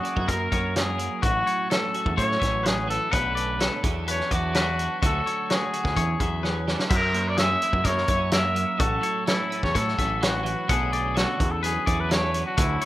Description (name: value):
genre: math rock and midwest emo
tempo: 127 BPM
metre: 4/4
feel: straight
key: unclear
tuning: A4 = 440 Hz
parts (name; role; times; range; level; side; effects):
- clear trumpet; melody; 0.0-12.9 s; E4 to E5; -26 LUFS; left 1 dB; none
- twelve-string electric guitar; accompaniment; 0.0-12.9 s; D2 to F#4; -32 LUFS; right 7 dB; analog chorus
- twangy electric guitar; arpeggios; 0.0-12.9 s; F#4 to F#5; -31 LUFS; left 8 dB; spring reverb
- loose indie drum kit; drums; 0.0-12.9 s; crash cymbal, hi-hat, kick drum, snare drum; -26 LUFS; equal; none
- growling picked electric bass; bass; 0.2-12.8 s; A1 to A2; -28 LUFS; equal; overdrive
room: little or no reverb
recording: rough home demo mix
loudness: -22 LUFS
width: side -15 dB against mid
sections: 0.0-12.9 A section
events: drum fill 6.4-6.9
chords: 0.0 F#7; 1.2 A69; 3.1 Bm9; 3.8 Esus2; 5.0 Dmaj7; 6.0 E13; 6.9 F#7; 8.8 A69; 10.7 Bm9; 11.4 Esus2